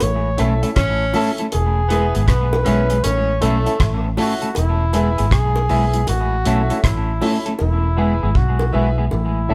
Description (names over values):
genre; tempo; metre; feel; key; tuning
roots reggae; 79 BPM; 4/4; swing 64% on 16ths; E major; A4 = 440 Hz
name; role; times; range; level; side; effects
warm flugelhorn; melody; 0.0-9.5 s; E4 to C#5; -26 LUFS; equal; none
vintage muted fingered electric bass; bass; 0.0-9.5 s; E1 to B1; -21 LUFS; equal; none
damped 70s drum kit; drums; 0.0-8.6 s; hi-hat, kick drum, rim click; -24 LUFS; equal; none
bongos; percussion; 0.0-9.3 s; none; -30 LUFS; equal; none
clean electric guitar; accompaniment; 0.4-9.5 s; G#3 to A4; -25 LUFS; equal; tape echo
warm upright piano; stabs; 0.4-9.5 s; E4 to E5; -30 LUFS; equal; none
warm tenor saxophone; second line; 0.8-4.1 s; A3 to C#4; -27 LUFS; equal; none
room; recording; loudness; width
moderate stone room reverb, RT60 1.3 s; band playing live in one room; -18 LUFS; mono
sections
0.0-9.5 A section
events
drum fill 7.6-9.5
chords
0.0 A; 1.5 E; 3.0 A; 4.6 E; 6.1 A; 7.6 E